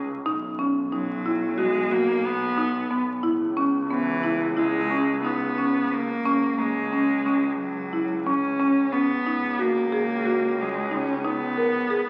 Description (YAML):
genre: contemporary instrumental, chamber music in an uneven meter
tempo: 180 BPM (eighths)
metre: 9/8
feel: straight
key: unclear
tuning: A4 = 440 Hz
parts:
  - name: marimba with medium mallets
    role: arpeggios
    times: 0.0-12.1 s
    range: A#3 to A#4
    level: -26 LUFS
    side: equal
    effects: none
  - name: bright double bass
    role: bass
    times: 0.0-12.1 s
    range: B1 to C#2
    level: -35 LUFS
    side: equal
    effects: none
  - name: clear cello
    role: melody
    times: 0.9-12.1 s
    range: E3 to C#4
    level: -30 LUFS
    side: equal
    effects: none
room: wet scoring stage reverb, RT60 1.7 s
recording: very old 78 rpm record, vinyl crackle, nothing above 10.3 kHz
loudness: -24 LUFS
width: mono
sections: 0.0-6.3 A section; 6.3-12.1 B section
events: none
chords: 0.3 B; 3.2 C#m; 6.3 F#5/C#; 9.3 G#m7/C#